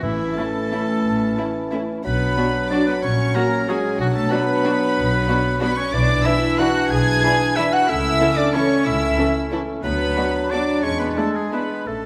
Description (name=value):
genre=classical, orchestral ballroom waltz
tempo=164-204 BPM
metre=3/4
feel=rubato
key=A major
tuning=A4 = 441 Hz
part: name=warm chamber violin section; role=melody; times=0.0-12.1 s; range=E5 to G#6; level=-31 LUFS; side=equal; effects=none
part: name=bright oboe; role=second line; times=0.0-12.1 s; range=E4 to G#5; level=-28 LUFS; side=equal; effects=none
part: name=dark clarinet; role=second line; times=0.0-12.1 s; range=C#4 to D4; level=-30 LUFS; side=equal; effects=none
part: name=hollow large flute ensemble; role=second line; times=0.0-12.1 s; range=E4 to G#5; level=-29 LUFS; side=equal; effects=none
part: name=dark bassoon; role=accompaniment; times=0.0-12.1 s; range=E3 to A3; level=-28 LUFS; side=equal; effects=none
part: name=dark chamber double bass section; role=bass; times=0.0-12.1 s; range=A1 to E2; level=-27 LUFS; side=equal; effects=none
part: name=rich studio cello section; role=bass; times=0.0-12.1 s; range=E3 to G#4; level=-28 LUFS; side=equal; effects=none
part: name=timpani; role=percussion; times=0.0-0.5 s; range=A2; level=-37 LUFS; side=equal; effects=none
part: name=rich studio violin section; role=second line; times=0.4-11.6 s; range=C#4 to B4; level=-34 LUFS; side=equal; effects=none
part: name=warm chamber viola section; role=accompaniment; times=0.4-11.6 s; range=E3 to D4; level=-33 LUFS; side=equal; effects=none
part: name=mellow French horn section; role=sustained chords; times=0.4-11.7 s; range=C#4 to A4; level=-33 LUFS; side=equal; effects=none
room=wet scoring stage reverb, RT60 1.9 s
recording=none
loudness=-20 LUFS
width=mono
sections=0.0-12.1 A section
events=none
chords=0.0 A; 2.0 Bm; 3.0 F#/A#; 4.0 Bm; 5.9 E7/B; 7.9 A/C#; 9.8 Bm/D; 10.8 E7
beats=| 0.03 0.38 0.72 | 1.05 1.38 1.72 | 2.05 2.37 2.71 | 3.03 3.35 3.69 | 4.00 4.32 4.65 | 4.97 5.28 5.62 | 5.93 6.25 6.59 | 6.91 7.23 7.57 | 7.88 8.20 8.54 | 8.86 9.18 9.52 | 9.84 10.17 10.51 | 10.84 11.17 11.53 | 11.87